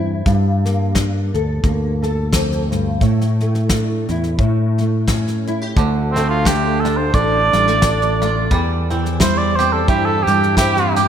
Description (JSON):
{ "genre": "acoustic folk duo or small band", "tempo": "87 BPM", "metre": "4/4", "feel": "swing 57% on 8ths", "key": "D minor", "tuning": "A4 = 441 Hz", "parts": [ { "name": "nylon-string guitar", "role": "accompaniment", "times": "0.0-11.1 s", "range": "D2 to A4", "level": "-20 LUFS", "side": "left 1 dB", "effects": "ensemble chorus" }, { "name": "fingered electric bass", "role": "bass", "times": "0.0-11.1 s", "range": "A1 to A2", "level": "-20 LUFS", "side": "equal", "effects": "none" }, { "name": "soft brush drum kit", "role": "drums", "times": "0.3-11.0 s", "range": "kick drum, snare drum", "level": "-20 LUFS", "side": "equal", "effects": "none" }, { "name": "bluegrass banjo", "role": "arpeggios", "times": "5.8-11.1 s", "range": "D3 to G4", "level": "-22 LUFS", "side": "right 5 dB", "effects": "none" }, { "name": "mellow cor anglais", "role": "melody", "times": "6.1-11.0 s", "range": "C4 to D5", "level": "-18 LUFS", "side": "right 2 dB", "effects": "diffuse ambient delay" } ], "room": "moderate plate reverb, RT60 1.9 s, studio reverb", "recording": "dreamy mix soaked in reverb", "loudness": "-14 LUFS", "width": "side -9 dB against mid", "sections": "0.0-5.8 A section; 5.8-11.1 B section", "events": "cor anglais solo 5.8-11.1", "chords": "0.3 Gmadd9; 3.0 Asus4; 4.4 A; 5.8 Dm; 8.5 C/E", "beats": "| 0.26 0.95 1.64 2.33 | 3.02 3.71 4.39 5.08 | 5.77 6.45 7.14 7.83 | 8.51 9.20 9.89 10.57" }